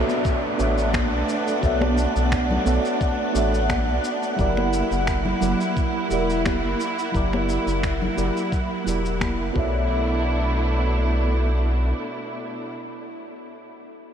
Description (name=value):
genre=sunset chillout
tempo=87 BPM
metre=4/4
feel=swing 54% on 16ths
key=B minor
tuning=A4 = 441 Hz
part: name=mellow FM electric piano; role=accompaniment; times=0.0-14.1 s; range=F#3 to E5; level=-27 LUFS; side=right 1 dB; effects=chorus, phaser, auto-pan, low-pass filter, analog delay
part: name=rich studio string section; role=sustained chords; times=0.0-12.7 s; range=B2 to E4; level=-26 LUFS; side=right 2 dB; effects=vintage 12-bit sampler grit, low-pass filter
part: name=round analog bass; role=bass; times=0.0-11.9 s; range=E1 to B1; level=-24 LUFS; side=equal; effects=none
part: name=downlifter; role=sound effects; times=0.0-4.4 s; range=none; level=-34 LUFS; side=equal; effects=none
part: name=wind-like tuned noise texture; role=texture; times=0.1-9.9 s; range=F#5 to F#6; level=-32 LUFS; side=equal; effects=built-in reverb, wide subtle chorus
part: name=electronic shaker and finger snaps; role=drums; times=0.1-9.4 s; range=none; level=-34 LUFS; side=left 1 dB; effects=studio reverb
part: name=electronic kick drum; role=drums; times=0.3-9.7 s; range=none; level=-26 LUFS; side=equal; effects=studio reverb
part: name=congas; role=percussion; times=0.9-9.4 s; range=none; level=-32 LUFS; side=left 5 dB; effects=none
room=moderate huge ambient reverb, RT60 8.0 s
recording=dreamy mix soaked in reverb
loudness=-20 LUFS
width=side -8 dB against mid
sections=0.0-9.9 A section; 9.9-12.7 B section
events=filter sweep on FM electric piano 0.0-9.9; filter sweep on string section 0.0-9.9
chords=0.0 Bm11; 4.4 F#7b9b13; 9.6 Bm11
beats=0.25 0.94 | 1.63 2.31 3.00 3.69 | 4.38 5.07 5.76 6.45 | 7.14 7.83 8.52 9.21 | 9.90 10.59 11.28 11.97